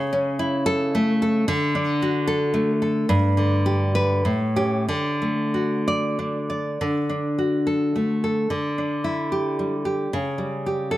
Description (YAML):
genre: romantic piece for solo classical guitar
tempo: 89-115 BPM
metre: 3/4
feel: rubato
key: D major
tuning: A4 = 440 Hz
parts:
  - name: nylon-string guitar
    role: solo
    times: 0.0-11.0 s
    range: G2 to D5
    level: -20 LUFS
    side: equal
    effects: none
room: moderate spring reverb, RT60 2.0 s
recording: none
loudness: -20 LUFS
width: side -15 dB against mid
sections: 0.0-6.8 A section; 6.8-11.0 B section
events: none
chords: 0.0 A/C#; 1.5 D; 3.1 G; 4.2 A7; 4.9 D; 8.5 Em7/D; 10.1 A7/C# (rootless)